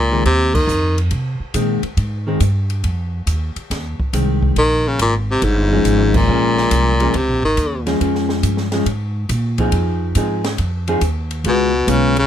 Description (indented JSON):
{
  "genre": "jazz, small-group swing and bop",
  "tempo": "139 BPM",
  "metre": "4/4",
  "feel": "swing 68% on 8ths",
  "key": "F minor",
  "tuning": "A4 = 440 Hz",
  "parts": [
    { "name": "edgy baritone saxophone", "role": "melody", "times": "0.0-1.0, 4.6-7.8, 11.5-12.3 s", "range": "Ab2 to Eb3", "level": "-16 LUFS", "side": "left 1 dB", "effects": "none" },
    { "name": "upright bass", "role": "bass", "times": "0.0-12.3 s", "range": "G1 to C3", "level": "-19 LUFS", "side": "right 1 dB", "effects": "none" },
    { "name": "vintage hollow-body jazz guitar", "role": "accompaniment", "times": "0.1-12.1 s", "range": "Eb3 to Ab4", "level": "-19 LUFS", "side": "left 2 dB", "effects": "none" },
    { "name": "open jazz drum kit", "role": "drums", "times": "0.3-12.2 s", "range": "crash cymbal, hi-hat, kick drum, ride cymbal, snare drum", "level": "-26 LUFS", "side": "equal", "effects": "none" }
  ],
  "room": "little or no reverb",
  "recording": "close, detailed microphones",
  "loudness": "-15 LUFS",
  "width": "side -10 dB against mid",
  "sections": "0.0-12.3 A section",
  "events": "band accent 0.5, 6.1",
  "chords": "0.0 Fm7; 4.6 Bbm7; 9.7 Fm7; 11.5 Db7",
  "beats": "0.25 0.68 | 1.11 1.54 1.97 2.40 | 2.83 3.27 3.70 4.13 | 4.56 4.99 5.42 5.85 | 6.28 6.71 7.14 7.57 | 8.01 8.44 8.87 9.30 | 9.73 10.16 10.59 11.02 | 11.45 11.88"
}